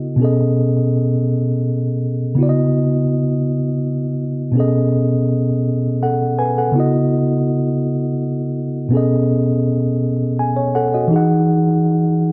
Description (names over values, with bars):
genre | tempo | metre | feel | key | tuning
R&B | 55 BPM (dotted quarters) | 6/8 | straight | unclear | A4 = 440 Hz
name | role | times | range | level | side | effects
mellow tine electric piano | solo | 0.0-12.3 s | B2 to G#5 | -17 LUFS | equal | none
room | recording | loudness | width
light reverb | dry, close 1970s-style studio recording | -17 LUFS | mono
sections
0.0-11.1 A section; 11.1-12.3 B section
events
tine electric piano fill 10.0-11.1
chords
0.2 B13; 2.4 C#m11; 4.6 B13; 6.7 C#m11; 8.9 B13; 11.1 Emaj9